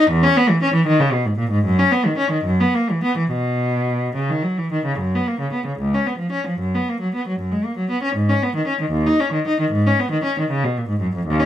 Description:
classical, baroque-style suite movement for unaccompanied cello; 68-81 BPM (dotted quarters); 6/8; rubato; B major, F# major from 5.0 s; A4 = 440 Hz
rich cello; solo; 0.0-11.5 s; C#2 to D#4; -17 LUFS; equal
little or no reverb; close, detailed microphones; -17 LUFS; side -11 dB against mid
0.0-5.0 A section; 5.0-11.5 A section
| 0.11 0.87 | 1.68 2.48 | 3.32 4.15 | 5.00 5.79 | 6.61 7.40 | 8.16 8.91 | 9.71 10.48 | 11.23

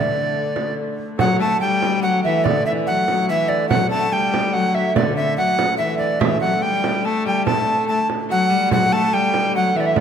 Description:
medieval dance; 144 BPM; 3/4; straight; D major; A4 = 440 Hz
bright reedy tenor recorder; melody; 0.0-10.0 s; D5 to A5; -20 LUFS; equal
clear viola da gamba; second line; 0.0-10.0 s; D3 to A3; -22 LUFS; left 5 dB
concert harp; second line; 0.0-10.0 s; D5 to A5; -27 LUFS; right 6 dB
dark hurdy-gurdy; drone; 0.0-10.0 s; D3 to A3; -28 LUFS; right 1 dB
frame drum; percussion; 0.6-10.0 s; -24 LUFS; right 6 dB
wet scoring stage reverb, RT60 1.6 s; -16 LUFS; side -8 dB against mid
0.0-1.2 A section; 1.2-10.0 A section
0.36 0.78 | 1.20 1.62 2.04 | 2.45 2.87 3.29 | 3.71 4.13 4.55 | 4.96 5.38 5.80 | 6.22 6.64 7.05 | 7.47 7.89 8.30 | 8.72 9.14 9.55 | 9.97

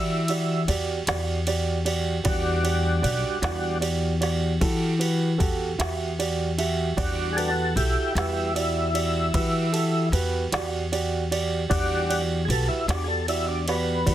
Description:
slow blues; 51 BPM (dotted quarters); 12/8; straight; E minor; A4 = 440 Hz
dark grand piano; accompaniment; 0.0-14.1 s; F#4 to E5; -28 LUFS; right 5 dB
tonewheel organ; sustained chords; 0.0-14.1 s; G3 to A4; -27 LUFS; left 1 dB; chorus vibrato, slow rotary speaker
upright bass; bass; 0.0-14.1 s; B1 to E3; -26 LUFS; left 1 dB
organic electronic drum kit; drums; 0.3-14.1 s; kick drum, ride cymbal, snare drum; -30 LUFS; right 1 dB; overdrive
light reverb; dense, heavily limited modern master; -22 LUFS; side -12 dB against mid
0.0-14.1 A section
tonewheel organ solo 0.0-14.1
0.0 Em9
1.07 | 2.25 3.43 4.61 5.79 | 6.98 8.16 9.34 10.52 | 11.70 12.88 14.06

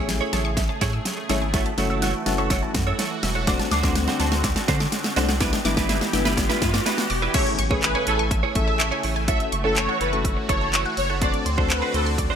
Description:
dance-pop; 124 BPM; 4/4; straight; A major; A4 = 438 Hz
soft electric-piano-like synth keys; accompaniment; 0.0-12.1 s; G3 to C5; -29 LUFS; left 6 dB; chorus, sidechain pumping
sweeping resonant pad; sustained chords; 0.0-12.4 s; C#3 to G#5; -31 LUFS; right 1 dB; chorus, sidechain pumping
wide unison pluck; arpeggios; 0.0-12.3 s; D5 to E6; -31 LUFS; left 2 dB; phaser, sidechain pumping, ping-pong delay
direct-recorded clean electric guitar; riff; 0.0-12.4 s; D4 to C#5; -29 LUFS; right 9 dB; ensemble chorus
saturated sub bass; bass; 0.0-12.3 s; E1 to D3; -26 LUFS; equal; sidechain pumping
riser and impact; sound effects; 1.2-9.3 s; -33 LUFS; left 1 dB
pop drum kit; drums; 0.1-12.3 s; crash cymbal, handclaps, hi-hat, kick drum, snare drum; -24 LUFS; equal
soft supersaw; melody; 7.3-12.0 s; G#4 to E5; -26 LUFS; equal; ensemble chorus, sidechain pumping, ping-pong delay
light reverb; bright 1980s-style digital production; -20 LUFS; side -8 dB against mid
0.0-7.3 A section; 7.3-12.4 B section
build-up 0.0-7.3; drum fill 0.0-7.3; riser 1.2-7.3; drop 7.3-12.4; impact 7.3-9.3
0.0 Amaj7; 1.5 F#m7; 3.5 D7; 5.4 G6; 7.3 Amaj7; 9.3 F#m7; 11.2 D7
0.09 0.57 1.05 | 1.54 2.02 2.51 2.99 | 3.47 3.96 4.44 4.93 | 5.41 5.89 6.38 6.86 | 7.34 7.83 8.31 8.80 | 9.28 9.76 10.25 10.73 | 11.22 11.70 12.18

